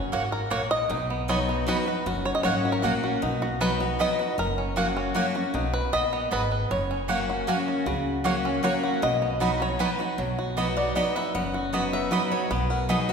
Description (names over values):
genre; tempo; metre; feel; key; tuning
bluegrass; 155 BPM; 3/4; straight; B major; A4 = 440 Hz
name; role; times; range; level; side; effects
bluegrass banjo; melody; 0.0-13.1 s; F#3 to D#5; -28 LUFS; equal; none
picked steel-string acoustic guitar; accompaniment; 0.0-13.1 s; F#2 to F#4; -28 LUFS; left 1 dB; none
mandolin; stabs; 0.1-13.0 s; A#3 to B5; -30 LUFS; right 3 dB; none
upright bass; bass; 0.1-13.1 s; F#1 to C#2; -32 LUFS; equal; none
picked swing-style acoustic guitar; melody; 10.8-13.1 s; F#4 to F#5; -30 LUFS; left 1 dB; none
room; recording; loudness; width
wet concert hall reverb, RT60 2.0 s; recorded in a church or concert hall; -23 LUFS; side -6 dB against mid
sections
0.0-10.2 A section; 10.2-13.1 A section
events
five-string banjo solo 0.0-10.2; steel-string acoustic guitar solo 10.2-13.1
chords
0.0 F#; 0.9 B; 2.1 F#; 3.2 B; 4.4 F#; 5.5 B; 6.7 F#; 9.0 B